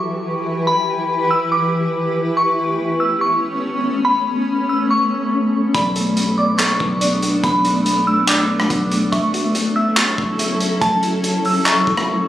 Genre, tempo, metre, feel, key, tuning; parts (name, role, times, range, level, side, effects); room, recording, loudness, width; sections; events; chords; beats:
hip hop, atmospheric cloud-rap; 142 BPM; 4/4; half-time; E dorian; A4 = 440 Hz
glassy synth bell; melody; 0.0-12.1 s; A5 to E6; -19 LUFS; equal; chorus, phaser, low-pass filter, tape echo
granular cloud pad; sustained chords; 0.0-12.3 s; E3 to B4; -19 LUFS; left 1 dB; built-in reverb
soft round pluck; arpeggios; 5.7-12.3 s; A3 to E5; -26 LUFS; right 1 dB; chorus, low-pass filter, tape echo
warm 808-style bass; bass; 5.7-12.1 s; F#1 to B1; -26 LUFS; equal
crunchy breakbeat drum kit; drums; 5.7-12.1 s; handclaps, hi-hat, kick drum, rim click; -20 LUFS; equal
light reverb, studio reverb; recorded on a phone in the room; -15 LUFS; side -12 dB against mid
0.0-12.3 A section
break 12.1
0.0 Em; 2.4 Aadd9; 5.7 Bm7; 9.1 F#m7
0.25 | 0.67 1.10 1.52 1.94 | 2.36 2.79 3.21 3.63 | 4.05 4.48 4.90 5.32 | 5.74 6.17 6.59 7.01 | 7.43 7.86 8.28 8.70 | 9.12 9.55 9.97 10.39 | 10.81 11.24 11.66 12.08